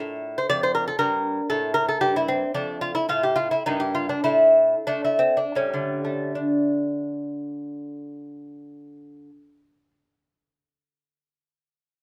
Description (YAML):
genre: classical, baroque-style dance for lute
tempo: 73-119 BPM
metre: 3/4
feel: rubato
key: D minor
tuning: A4 = 435 Hz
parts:
  - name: lute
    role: solo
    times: 0.0-9.9 s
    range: F2 to D5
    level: -24 LUFS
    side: equal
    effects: none
room: light reverb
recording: none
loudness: -23 LUFS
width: mono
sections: 0.0-6.4 A section; 6.4-11.2 B section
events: slowing down 1.8-6.4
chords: 0.0 Bb; 1.0 Gmadd9; 2.5 Fmaj13; 3.6 Gm7; 4.2 N.C.; 5.6 A7; 6.4 D5